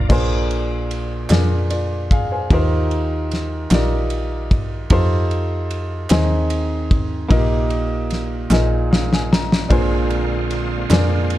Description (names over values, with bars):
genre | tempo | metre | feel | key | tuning
slow gospel | 50 BPM (dotted quarters) | 6/8 | straight | unclear | A4 = 445 Hz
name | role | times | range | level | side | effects
warm upright piano | accompaniment | 0.0-11.4 s | Bb2 to Bb5 | -22 LUFS | equal | none
bright tonewheel organ | sustained chords | 0.0-0.1, 9.7-11.4 s | D3 to F4 | -26 LUFS | right 5 dB | slow rotary speaker, chorus vibrato
woody FM bass | bass | 0.0-11.4 s | Bb1 to F2 | -21 LUFS | equal | none
warm soul drum kit | drums | 0.1-11.4 s | crash cymbal, kick drum, ride cymbal, snare drum | -19 LUFS | equal | none
group handclap | percussion | 1.3-11.3 s | none | -30 LUFS | right 5 dB | none
room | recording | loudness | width
studio reverb | dark, warm production | -16 LUFS | side -14 dB against mid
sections
0.1-11.4 A section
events
drum fill 8.5-9.7; upright piano fill 8.5-9.7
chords
0.1 Bb9; 2.5 Eb69; 4.9 F9; 6.1 Ab/Eb; 7.3 Eb/Bb; 8.5 Bb7sus4; 9.7 Bb9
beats
| 0.10 1.30 | 2.51 3.71 | 4.91 6.11 | 7.31 8.51 | 9.71 10.91